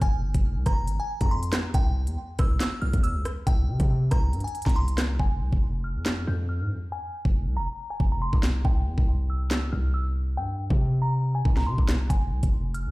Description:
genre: hip hop, drill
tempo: 139 BPM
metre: 4/4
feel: half-time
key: F harmonic minor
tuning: A4 = 439 Hz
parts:
  - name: delicate synth tine bell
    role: melody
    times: 0.0-12.9 s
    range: G5 to G6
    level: -34 LUFS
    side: equal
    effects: chorus, low-pass filter, digital delay
  - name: hard-hitting 808-style bass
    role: bass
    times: 0.0-12.9 s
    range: F1 to C3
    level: -26 LUFS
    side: equal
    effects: none
  - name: drill drum kit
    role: drums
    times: 0.0-12.9 s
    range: handclaps, hi-hat, kick drum, rim click, snare drum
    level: -24 LUFS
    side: equal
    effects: none
room: little or no reverb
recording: played on a big sound system in a bare room, large studio reverb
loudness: -23 LUFS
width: side -20 dB against mid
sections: 0.0-5.2 A section; 5.2-12.9 B section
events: hi-hats muted 5.2-12.1; filter sweep on synth bell 5.2-12.9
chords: 0.0 Fm; 1.7 C5; 5.2 Fm; 8.6 C5; 12.1 Fm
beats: | 0.01 0.45 0.88 1.31 | 1.74 2.17 2.60 3.04 | 3.47 3.90 4.33 4.76 | 5.19 5.63 6.06 6.49 | 6.92 7.35 7.78 8.22 | 8.65 9.08 9.51 9.94 | 10.37 10.81 11.24 11.67 | 12.10 12.53

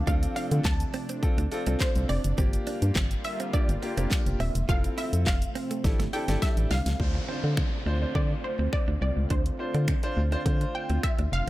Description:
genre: dance-pop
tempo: 104 BPM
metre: 4/4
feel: straight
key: D minor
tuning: A4 = 440 Hz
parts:
  - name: wide unison pluck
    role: melody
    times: 0.0-11.5 s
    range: C5 to A5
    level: -35 LUFS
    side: right 1 dB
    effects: tape echo
  - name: lush unison pad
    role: sustained chords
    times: 0.0-11.5 s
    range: C3 to F4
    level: -38 LUFS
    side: equal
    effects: chorus, sidechain pumping
  - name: organ-like FM bass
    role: bass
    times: 0.0-11.4 s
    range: Eb1 to D3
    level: -26 LUFS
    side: equal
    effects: sidechain pumping
  - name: clear baby grand piano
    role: accompaniment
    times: 0.1-11.1 s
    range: Bb3 to A5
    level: -35 LUFS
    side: left 1 dB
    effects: sidechain pumping, tape echo
  - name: direct-recorded clean electric guitar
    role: riff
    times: 0.1-11.4 s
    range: A3 to F4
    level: -38 LUFS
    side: right 7 dB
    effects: lush chorus, tape echo
  - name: pop drum kit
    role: drums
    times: 0.1-11.5 s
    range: finger snaps, handclaps, hi-hat, kick drum, shaker, snare drum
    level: -27 LUFS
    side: equal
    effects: none
  - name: downlifter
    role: sound effects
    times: 7.0-11.5 s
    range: none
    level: -41 LUFS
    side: equal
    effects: none
room: little or no reverb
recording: echo-heavy mix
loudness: -24 LUFS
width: side -16 dB against mid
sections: 0.0-7.0 A section; 7.0-11.5 B section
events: drum fill 5.8-7.0; grand piano fill 5.8-7.0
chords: 0.0 Dm7; 2.4 Gm7; 4.7 Fmaj7; 5.8 A7sus4; 7.0 Dm7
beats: | 0.07 0.65 1.23 1.80 | 2.38 2.96 3.54 4.11 | 4.69 5.26 5.84 6.42 | 7.00 7.57 8.15 8.73 | 9.30 9.88 10.46 11.04

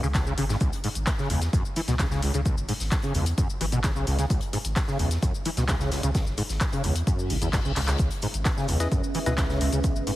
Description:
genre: acid house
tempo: 130 BPM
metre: 4/4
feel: straight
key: C# minor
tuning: A4 = 439 Hz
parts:
  - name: overdriven acid bass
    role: riff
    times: 0.0-10.1 s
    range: B1 to E3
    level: -28 LUFS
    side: equal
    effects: ensemble chorus, cassette tape, sidechain pumping
  - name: saturated sub bass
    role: bass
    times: 0.0-10.0 s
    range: G#1 to E2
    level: -28 LUFS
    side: equal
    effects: sidechain pumping
  - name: punchy analog drum machine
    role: drums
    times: 0.0-10.2 s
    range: handclaps, hi-hat, shaker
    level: -32 LUFS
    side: left 1 dB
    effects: none
  - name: electronic kick drum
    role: drums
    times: 0.1-9.9 s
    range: none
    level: -27 LUFS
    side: equal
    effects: none
  - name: huge arena drum kit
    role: drums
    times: 0.1-10.2 s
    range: hi-hat, shaker, snare drum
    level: -41 LUFS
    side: equal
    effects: high-pass filter on hats, high-pass filter on snare, high-pass filter on perc, high-pass filter on room
  - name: reverse cymbal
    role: sound effects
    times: 7.2-8.0 s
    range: none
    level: -39 LUFS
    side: left 4 dB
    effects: none
  - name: dark analog pad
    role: sustained chords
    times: 8.3-10.2 s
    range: C#4 to E5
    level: -32 LUFS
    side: right 3 dB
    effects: chorus, sidechain pumping
  - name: percussive organ stab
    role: stabs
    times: 8.8-9.3 s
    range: E4 to D#5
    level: -34 LUFS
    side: left 2 dB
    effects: chorus, analog delay
room: light reverb, studio reverb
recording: heavily compressed radio sound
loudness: -23 LUFS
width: side -15 dB against mid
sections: 0.0-10.2 A section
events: filter sweep on acid bass 0.0-10.2; reverse cymbal 7.2-8.0; drum fill 7.8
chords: 0.0 C#m7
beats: 0.15 | 0.61 1.07 1.53 1.99 | 2.46 2.92 3.38 3.84 | 4.30 4.76 5.22 5.69 | 6.15 6.61 7.07 7.53 | 7.99 8.46 8.92 9.38 | 9.84

